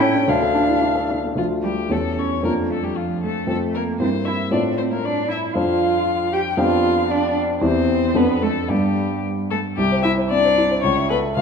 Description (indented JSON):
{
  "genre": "quick classical-period movement for piano trio",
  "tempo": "114 BPM",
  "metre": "2/4",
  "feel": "straight",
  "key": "D minor, C major from 5.6 s",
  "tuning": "A4 = 441 Hz",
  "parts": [
    { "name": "muted violin", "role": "melody", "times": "0.0-11.4 s", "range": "F4 to G5", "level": "-23 LUFS", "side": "left 8 dB", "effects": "none" },
    { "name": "muted cello", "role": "second line", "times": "0.0-11.4 s", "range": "F3 to G4", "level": "-23 LUFS", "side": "right 4 dB", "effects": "none" },
    { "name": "warm baby grand piano", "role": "accompaniment", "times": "0.0-11.4 s", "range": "C2 to E5", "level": "-21 LUFS", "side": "equal", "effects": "none" }
  ],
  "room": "moderate scoring stage reverb, RT60 2.0 s",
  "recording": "minimal, uncompressed stereo recording",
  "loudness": "-17 LUFS",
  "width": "side -6 dB against mid",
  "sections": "0.0-1.4 A section; 1.4-9.8 B section; 9.8-11.4 C section",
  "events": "none",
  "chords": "0.3 Dm; 1.9 A7/E; 2.4 Dm/F; 3.5 F; 4.0 C7/G; 4.5 F/A; 5.6 Dm7/F; 6.6 G7/F; 7.6 C/E; 8.2 Dm7/F; 8.7 G; 9.8 C; 10.8 A/C#"
}